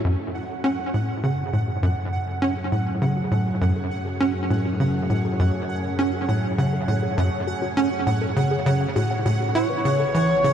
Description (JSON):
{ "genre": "ambient, sequencer-driven space music", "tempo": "101 BPM", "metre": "4/4", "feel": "straight", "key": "F# minor", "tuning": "A4 = 442 Hz", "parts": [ { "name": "phased string machine", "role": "sustained chords", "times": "0.0-10.5 s", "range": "E3 to C#5", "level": "-32 LUFS", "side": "equal", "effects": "ensemble chorus, phaser" }, { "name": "soft round pluck", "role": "arpeggios", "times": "0.0-10.5 s", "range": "E4 to B5", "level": "-34 LUFS", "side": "moving between left 6 dB and equal", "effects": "none" }, { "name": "tight sequencer bass", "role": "riff", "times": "0.0-10.5 s", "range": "F#2 to E4", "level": "-22 LUFS", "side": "equal", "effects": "lush chorus, tape echo" }, { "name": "analog drone", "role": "bass", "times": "1.4-10.5 s", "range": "A1 to F#2", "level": "-29 LUFS", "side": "equal", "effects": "chorus" }, { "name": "pulsing gated texture", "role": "texture", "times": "0.4-10.5 s", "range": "F#5", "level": "-32 LUFS", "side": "right 6 dB", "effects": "chorus, built-in reverb" }, { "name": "pulse-width lead", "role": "melody", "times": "9.6-10.5 s", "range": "C#5", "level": "-22 LUFS", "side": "left 1 dB", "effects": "chorus, cassette tape" } ], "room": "wet cathedral reverb, RT60 6.0 s", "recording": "in a vast, echoing space, cassette tape", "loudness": "-20 LUFS", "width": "side -9 dB against mid", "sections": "0.0-10.5 A section", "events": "fade-in on string machine 0.0-10.5", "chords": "0.0 F#madd9; 9.6 Aadd9" }